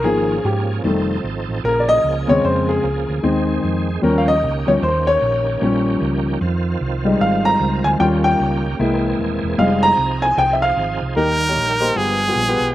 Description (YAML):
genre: uptempo gospel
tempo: 151 BPM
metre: 4/4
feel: swing 61% on 8ths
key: unclear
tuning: A4 = 440 Hz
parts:
  - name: warm upright piano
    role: accompaniment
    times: 0.0-12.7 s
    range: G2 to Bb5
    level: -17 LUFS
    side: left 1 dB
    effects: none
  - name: bright tonewheel organ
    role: sustained chords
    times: 0.0-12.7 s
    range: Db3 to G5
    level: -26 LUFS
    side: right 5 dB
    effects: fast rotary speaker, overdrive, chorus vibrato
  - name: hollow-body short-scale fingered electric bass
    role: bass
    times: 0.0-12.7 s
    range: Eb1 to Ab2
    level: -23 LUFS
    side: right 1 dB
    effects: none
  - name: brilliant trumpet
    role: melody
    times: 11.2-12.7 s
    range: Ab4 to Bb4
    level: -18 LUFS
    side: right 1 dB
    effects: none
room: little or no reverb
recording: recorded outdoors, with no room sound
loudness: -15 LUFS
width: side -14 dB against mid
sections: 0.0-11.2 A section; 11.2-12.7 B section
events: upright piano solo 0.0-11.2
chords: 0.0 Db6/Ab; 0.8 F7; 1.6 Bbm7; 3.2 Ab/Eb; 4.0 Eb7; 6.4 Fm7; 8.0 Eb7; 8.8 C7b13; 9.6 Fm7; 11.2 Eb; 12.0 G7b9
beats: | 0.04 0.44 0.84 1.24 | 1.64 2.04 2.44 2.83 | 3.23 3.63 4.03 4.43 | 4.83 5.22 5.62 6.02 | 6.41 6.81 7.21 7.60 | 8.00 8.39 8.79 9.19 | 9.58 9.98 10.38 10.77 | 11.17 11.57 11.96 12.36